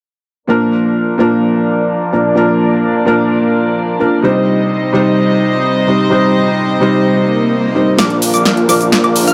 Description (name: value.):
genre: EDM, festival progressive house.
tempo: 128 BPM.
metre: 4/4.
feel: straight.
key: Bb major.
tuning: A4 = 439 Hz.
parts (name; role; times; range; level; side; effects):
felt-muted upright piano; accompaniment; 0.5-9.3 s; Bb2 to C5; -14 LUFS; equal; dub echo.
warm studio string section; sustained chords; 0.5-9.3 s; D3 to Eb5; -20 LUFS; equal; low-pass filter.
swell and riser; sound effects; 7.3-9.3 s; none; -24 LUFS; equal; none.
plucky unison lead; arpeggios; 8.0-9.3 s; D6 to F6; -19 LUFS; equal; dub echo.
dense compressed supersaw; riff; 8.0-9.3 s; F4 to F5; -19 LUFS; equal; low-pass filter, dub echo.
detuned saw bass; bass; 8.0-9.3 s; Bb1; -23 LUFS; equal; chorus, high-pass filter.
big-room dance drum kit; drums; 8.0-9.3 s; hi-hat, shaker, snare drum; -17 LUFS; equal; studio ambience.
room: moderate lush hall reverb, RT60 2.1 s.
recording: none.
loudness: -13 LUFS.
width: mono.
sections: 0.5-8.0 A section; 8.0-9.3 B section.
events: filter sweep on string section 0.5-8.0; swell 7.3-8.0; build-up 8.0-9.3; drum fill 8.0-9.3; filter sweep on supersaw synth 8.0-9.3.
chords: 0.5 Bb; 4.2 Cm; 8.0 Bb.